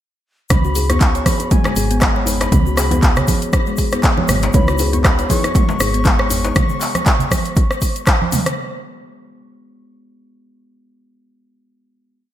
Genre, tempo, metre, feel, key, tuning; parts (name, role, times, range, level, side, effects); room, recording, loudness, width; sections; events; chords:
afro house; 119 BPM; 4/4; swing 56% on 16ths; C# minor; A4 = 439 Hz
bright reedy bansuri; melody; 0.5-8.1 s; G#5 to C#6; -28 LUFS; left 1 dB; ping-pong delay
kalimba; arpeggios; 0.5-6.3 s; G#3 to C#5; -24 LUFS; left 2 dB; sidechain pumping, ping-pong delay
woody FM bass; bass; 0.5-6.5 s; G#1 to C#2; -20 LUFS; equal; sidechain pumping
deep house drum kit; drums; 0.5-8.6 s; handclaps, hi-hat, rim click, toms; -19 LUFS; equal; gated reverb
electronic kick drum; drums; 0.5-8.2 s; -16 LUFS; equal
congas; percussion; 0.5-8.4 s; -24 LUFS; right 4 dB
egg shaker; percussion; 0.5-8.5 s; -30 LUFS; left 6 dB
djembe; percussion; 0.8-6.5 s; -28 LUFS; left 3 dB
deep mellow chord stab; stabs; 4.5-6.5 s; D#4 to C#5; -26 LUFS; left 3 dB; chorus, phaser, cassette tape, sidechain pumping, ping-pong delay
light reverb, small room ambience; bright 1980s-style digital production; -13 LUFS; side -12 dB against mid
0.5-8.6 drop
drop 0.5-8.6
0.5 C#m7